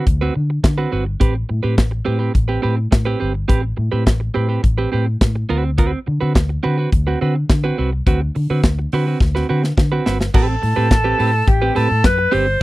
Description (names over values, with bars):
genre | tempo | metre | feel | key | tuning
disco | 105 BPM | 4/4 | straight | A dorian | A4 = 440 Hz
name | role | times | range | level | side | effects
clean electric guitar | accompaniment | 0.0-12.5 s | C4 to B4 | -21 LUFS | right 5 dB | none
vintage muted fingered electric bass | bass | 0.1-12.6 s | G1 to D3 | -19 LUFS | equal | none
modern studio drum kit | drums | 0.1-12.5 s | crash cymbal, handclaps, hi-hat, kick drum, snare drum | -16 LUFS | equal | none
breathy alto saxophone | melody | 10.3-12.6 s | G4 to C5 | -18 LUFS | equal | none
room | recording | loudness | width
little or no reverb | dry, close 1970s-style studio recording | -15 LUFS | side -18 dB against mid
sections
0.0-10.3 A section; 10.3-12.6 B section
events
drum fill 9.2-10.3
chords
0.0 D6; 1.2 Am9; 5.5 D6; 10.3 Am9